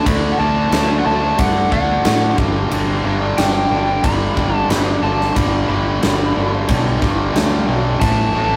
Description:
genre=hard rock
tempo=90 BPM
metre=4/4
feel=straight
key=unclear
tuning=A4 = 439 Hz
part: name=biting lead guitar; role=melody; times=0.0-8.6 s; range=F#5 to B5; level=-23 LUFS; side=equal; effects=overdrive
part: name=distorted electric guitar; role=riff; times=0.0-8.6 s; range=G2 to D4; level=-23 LUFS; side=equal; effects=overdrive
part: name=sludgy distorted guitar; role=riff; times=0.0-8.6 s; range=G2 to D4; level=-27 LUFS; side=equal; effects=overdrive
part: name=modern bright fingered electric bass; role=bass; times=0.1-8.6 s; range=G1 to A2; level=-23 LUFS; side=equal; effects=none
part: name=huge arena drum kit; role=drums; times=0.1-8.2 s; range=crash cymbal, kick drum, snare drum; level=-22 LUFS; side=equal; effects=none
room=moderate small room reverb, RT60 0.5 s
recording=rough rehearsal-room recording, tube saturation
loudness=-17 LUFS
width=mono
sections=0.0-8.6 A section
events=none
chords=0.0 D; 2.4 G; 8.0 A5

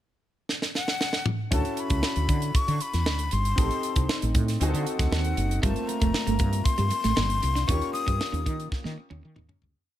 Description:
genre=polished 1980s jazz-funk pop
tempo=117 BPM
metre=4/4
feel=straight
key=unclear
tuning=A4 = 442 Hz
part: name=tight funk drum kit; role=drums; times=0.5-9.7 s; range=hi-hat, kick drum, snare drum, toms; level=-27 LUFS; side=right 1 dB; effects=none
part: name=breathy jazz flute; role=melody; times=0.8-8.7 s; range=F5 to Eb6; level=-31 LUFS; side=left 5 dB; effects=none
part: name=clear baby grand piano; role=accompaniment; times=1.5-9.8 s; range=A3 to A4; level=-32 LUFS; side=left 1 dB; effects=analog chorus
part: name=woody fretless electric bass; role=bass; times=1.5-9.7 s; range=F1 to Eb3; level=-27 LUFS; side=equal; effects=wide subtle chorus
part: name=clean electric guitar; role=riff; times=5.6-9.6 s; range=G3 to Eb4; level=-32 LUFS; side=right 4 dB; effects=lush chorus
room=little or no reverb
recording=none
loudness=-23 LUFS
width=side -12 dB against mid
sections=0.0-1.5 pickup bar; 1.5-9.8 verse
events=drum fill 0.5-1.5, 8.7-9.8; fade-out 7.7-9.8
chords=0.0 N.C.; 1.5 Dmaj9; 3.6 Am7b5; 4.6 D7b9; 5.6 Gm11; 7.7 Eb9

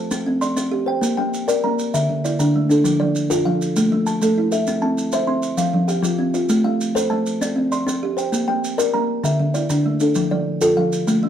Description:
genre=southern african traditional, mbira-style interlocking cycle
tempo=131 BPM (dotted quarters)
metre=12/8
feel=straight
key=F major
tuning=A4 = 441 Hz
part: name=kalimba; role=arpeggios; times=0.0-11.3 s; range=D3 to C6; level=-20 LUFS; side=left 2 dB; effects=none
part: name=kalimba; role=arpeggios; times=0.0-11.3 s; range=D3 to G5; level=-21 LUFS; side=right 2 dB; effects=none
part: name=maracas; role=percussion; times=0.1-11.2 s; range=none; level=-31 LUFS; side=right 4 dB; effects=none
room=wet studio reverb, RT60 0.6 s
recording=heard from further back in the room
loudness=-17 LUFS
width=side -9 dB against mid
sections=0.0-11.3 A section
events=none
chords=0.1 C5; 1.0 Bb; 1.9 D5; 2.9 F; 3.8 A5; 4.7 C; 5.6 F5; 6.5 Am; 7.4 C5; 8.3 Bb; 9.2 D5; 10.2 F

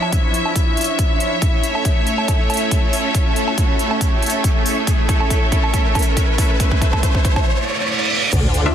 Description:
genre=heavy wobble dubstep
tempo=139 BPM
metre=4/4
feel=swing 54% on 16ths, half-time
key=unclear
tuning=A4 = 440 Hz
part: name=supersaw pad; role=sustained chords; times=0.0-8.3 s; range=F3 to C#5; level=-23 LUFS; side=equal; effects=phaser, vintage 12-bit sampler grit, sidechain pumping
part: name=big-room dance drum kit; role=drums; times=0.0-8.6 s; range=crash cymbal, hi-hat, woodblock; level=-25 LUFS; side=right 2 dB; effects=none
part: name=riser, reverse cymbal and sub drop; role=sound effects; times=0.1-8.7 s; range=none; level=-25 LUFS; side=right 1 dB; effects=none
part: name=warm studio string section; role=texture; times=0.0-8.7 s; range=F3 to E5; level=-23 LUFS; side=equal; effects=sidechain pumping
part: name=electronic kick drum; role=drums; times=0.1-8.4 s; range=none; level=-17 LUFS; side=equal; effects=none
part: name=formant-sweep wobble bass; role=bass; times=8.3-8.7 s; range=D2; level=-18 LUFS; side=equal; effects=chorus, overdrive
part: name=orchestra-hit-like synth stab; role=stabs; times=8.7 s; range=D4 to E5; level=-17 LUFS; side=left 3 dB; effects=built-in reverb
room=light reverb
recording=dense, heavily limited modern master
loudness=-15 LUFS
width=side -9 dB against mid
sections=0.0-8.3 A section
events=build-up 0.0-8.3; riser 0.1-8.3; drum fill 1.4-7.5; reverse cymbal 7.5-8.3; impact 8.3-8.7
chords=0.0 Dmadd9; 1.4 A

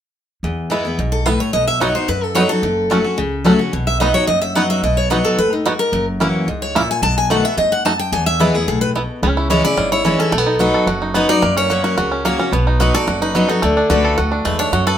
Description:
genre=bluegrass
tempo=218 BPM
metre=4/4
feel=straight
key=unclear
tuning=A4 = 440 Hz
part: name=picked steel-string acoustic guitar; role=accompaniment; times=0.4-15.0 s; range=E2 to F#4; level=-18 LUFS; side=left 1 dB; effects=none
part: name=upright bass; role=bass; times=0.4-15.0 s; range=F#1 to F#2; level=-22 LUFS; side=equal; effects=none
part: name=bluegrass banjo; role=melody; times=0.7-15.0 s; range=A3 to A4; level=-19 LUFS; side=right 3 dB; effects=none
part: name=picked steel-string acoustic guitar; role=melody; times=1.1-15.0 s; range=D#4 to A5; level=-18 LUFS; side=left 1 dB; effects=none
room=moderate studio reverb, RT60 0.6 s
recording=minimal, uncompressed stereo recording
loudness=-14 LUFS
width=side -10 dB against mid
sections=0.4-9.2 A section; 9.2-15.0 B section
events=none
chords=0.4 E; 1.5 B; 2.6 F#m; 3.7 B; 5.9 F#7; 7.0 B7; 8.1 E; 9.2 C#m; 10.3 B; 11.4 F#; 12.5 B; 13.6 D

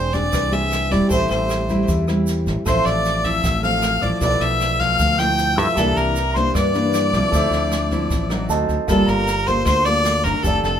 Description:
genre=bossa nova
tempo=154 BPM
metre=4/4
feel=straight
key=unclear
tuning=A4 = 440 Hz
part: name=bright fiddle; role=melody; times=0.0-10.8 s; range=A4 to G5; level=-21 LUFS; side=equal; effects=none
part: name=clear concert grand piano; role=accompaniment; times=0.0-10.8 s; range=F4 to A5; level=-27 LUFS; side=right 2 dB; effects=none
part: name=nylon-string guitar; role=accompaniment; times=0.0-10.8 s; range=F2 to A4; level=-23 LUFS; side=left 1 dB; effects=none
part: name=fingered electric bass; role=bass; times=0.0-10.8 s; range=E1 to G2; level=-23 LUFS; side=equal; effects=none
part: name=jazz brush drum kit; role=drums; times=0.1-10.7 s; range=kick drum, rim click, snare drum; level=-27 LUFS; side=right 1 dB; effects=none
part: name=egg shaker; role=percussion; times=0.1-10.8 s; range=none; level=-37 LUFS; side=right 5 dB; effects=none
part: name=bright jazz flute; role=second line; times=2.7-10.8 s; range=A5 to G6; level=-26 LUFS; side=left 3 dB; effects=none
room=moderate small room reverb, RT60 0.5 s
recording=minimal, uncompressed stereo recording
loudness=-16 LUFS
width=side -8 dB against mid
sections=0.0-8.9 A section; 8.9-10.8 A section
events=grand piano fill 8.3-8.9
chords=0.0 E7alt; 1.1 Am7; 2.7 Dm9/A; 4.2 G13/B; 5.8 C9; 7.3 Dm9; 8.5 D7b9; 8.9 Gm9

